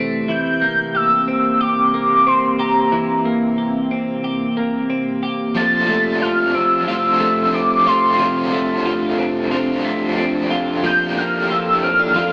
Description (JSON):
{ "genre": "dream pop", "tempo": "91 BPM", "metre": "4/4", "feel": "straight", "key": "unclear", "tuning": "A4 = 440 Hz", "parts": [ { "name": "warbly tape-like pad", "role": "sustained chords", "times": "0.0-12.3 s", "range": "F2 to A4", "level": "-25 LUFS", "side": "equal", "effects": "chorus, built-in reverb, phaser" }, { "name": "twelve-string electric guitar", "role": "arpeggios", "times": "0.0-12.3 s", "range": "E3 to G4", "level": "-24 LUFS", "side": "equal", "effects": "subtle chorus, analog delay" }, { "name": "warm velvety synth lead", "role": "melody", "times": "0.3-12.3 s", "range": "Bb5 to A6", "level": "-19 LUFS", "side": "equal", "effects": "chorus, analog delay" }, { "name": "overdriven electric guitar", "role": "accompaniment", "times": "5.5-12.3 s", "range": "F3 to C5", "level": "-26 LUFS", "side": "equal", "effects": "tremolo, lush chorus" } ], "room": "moderate plate reverb, RT60 3.6 s", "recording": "small speaker sound", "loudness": "-18 LUFS", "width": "mono", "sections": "0.0-12.3 A section", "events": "none", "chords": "0.3 C7; 5.6 Dm7/F; 10.8 Gm7/F" }